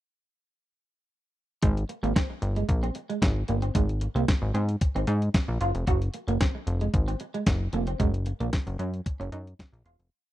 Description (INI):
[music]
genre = early-eighties boogie funk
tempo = 113 BPM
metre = 4/4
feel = straight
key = Ab major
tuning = A4 = 440 Hz
[part]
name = electric guitar at the edge of break-up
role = riff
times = 1.6-9.9 s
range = Ab3 to Gb4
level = -32 LUFS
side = right 4 dB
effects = wide subtle chorus
[part]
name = plucky analog bass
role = bass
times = 1.6-10.1 s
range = Fb1 to Ab2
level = -27 LUFS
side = equal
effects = none
[part]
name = clean 12-bit digital drum machine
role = drums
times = 1.6-10.1 s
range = hi-hat, kick drum, snare drum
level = -25 LUFS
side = equal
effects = none
[sound]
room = digital ambience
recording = dry, close 1970s-style studio recording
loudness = -24 LUFS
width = side -15 dB against mid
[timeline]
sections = 1.6-10.1 breakdown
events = fade-out 8.0-10.1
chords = 1.6 Abmaj9; 5.6 Gbmaj9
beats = | 1.63 2.16 2.69 3.22 | 3.75 4.28 4.81 5.34 | 5.88 6.41 6.94 7.47 | 8.00 8.53 9.06 9.59